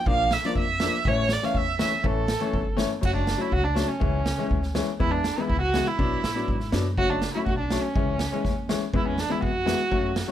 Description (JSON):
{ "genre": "klezmer", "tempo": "122 BPM", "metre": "2/4", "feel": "straight", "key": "A phrygian dominant, F# minor from 3.0 s", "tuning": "A4 = 440 Hz", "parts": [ { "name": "dark violin", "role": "melody", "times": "0.0-10.3 s", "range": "C#4 to F5", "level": "-27 LUFS", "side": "right 4 dB", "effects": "plate reverb" }, { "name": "bright upright piano", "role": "accompaniment", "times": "0.1-10.3 s", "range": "E3 to D4", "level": "-28 LUFS", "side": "left 5 dB", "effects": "none" }, { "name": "upright bass", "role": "bass", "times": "0.1-10.2 s", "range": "F#1 to A2", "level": "-30 LUFS", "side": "equal", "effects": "none" }, { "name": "street-band drum kit", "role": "drums", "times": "0.1-10.3 s", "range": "crash cymbal, kick drum, snare drum", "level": "-28 LUFS", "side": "right 1 dB", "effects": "none" } ], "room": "light reverb", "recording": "none", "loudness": "-22 LUFS", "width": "side -11 dB against mid", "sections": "0.0-3.0 A section; 3.0-10.3 B section", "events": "none", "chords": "0.0 Bb; 1.0 A; 3.0 F#m; 4.0 C#m; 5.0 E; 6.0 Bm; 7.0 F#m; 8.0 C#m; 8.9 E", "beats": "| 0.06 0.56 | 1.05 1.54 | 2.04 2.53 | 3.02 3.52 | 4.01 4.51 | 5.00 5.49 | 5.99 6.48 | 6.97 7.46 | 7.96 8.45 | 8.94 9.43 | 9.92" }